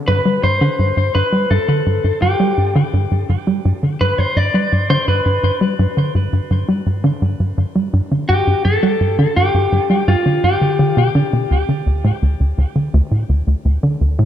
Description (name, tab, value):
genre	ambient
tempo	84 BPM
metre	4/4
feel	straight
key	unclear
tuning	A4 = 442 Hz
part	lightly driven lead guitar	melody	0.1-11.1 s	F4 to D5	-18 LUFS	left 2 dB	ping-pong delay
part	tight sequencer bass	riff	0.1-14.3 s	D2 to G3	-15 LUFS	equal	analog chorus, ping-pong delay
room	wet spring reverb, RT60 2.5 s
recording	echo-heavy mix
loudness	-14 LUFS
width	side -10 dB against mid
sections	0.0-11.5 A section; 11.5-14.3 B section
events	none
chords	0.1 G5; 11.5 D5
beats	| 0.07 0.79 1.50 2.22 | 2.93 3.65 4.36 5.08 | 5.79 6.50 7.22 7.93 | 8.65 9.36 10.07 10.79 | 11.50 12.22 12.93 13.65